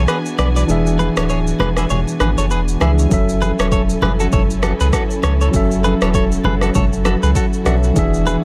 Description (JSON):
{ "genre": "afrobeats", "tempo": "99 BPM", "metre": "4/4", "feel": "swing 58% on 16ths", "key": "F# minor", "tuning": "A4 = 441 Hz", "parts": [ { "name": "tine electric piano", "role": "accompaniment", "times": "0.0-8.4 s", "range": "E3 to E5", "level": "-22 LUFS", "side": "equal", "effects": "none" }, { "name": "dark symphonic string section", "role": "sustained chords", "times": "0.0-8.4 s", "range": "E3 to G#5", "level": "-28 LUFS", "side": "equal", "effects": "none" }, { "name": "direct-recorded clean electric guitar", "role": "riff", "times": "0.0-8.4 s", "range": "D4 to D5", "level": "-25 LUFS", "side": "equal", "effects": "delay" }, { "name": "warm sub bass", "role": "bass", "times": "0.0-8.4 s", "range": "D1 to C#2", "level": "-20 LUFS", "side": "equal", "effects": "none" }, { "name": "afro-pop drum kit", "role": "drums", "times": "0.1-8.4 s", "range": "kick drum, rim click, shaker", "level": "-22 LUFS", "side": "equal", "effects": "overdrive" }, { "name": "congas", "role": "percussion", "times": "0.4-8.4 s", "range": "none", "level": "-28 LUFS", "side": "equal", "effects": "none" } ], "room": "digital ambience", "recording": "none", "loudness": "-16 LUFS", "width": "mono", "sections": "0.0-8.4 A section", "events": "break 0.0-3.1", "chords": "0.0 E7; 3.1 F#m7", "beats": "0.08 | 0.69 1.29 1.90 2.51 | 3.11 3.72 4.33 4.93 | 5.54 6.14 6.75 7.36 | 7.96" }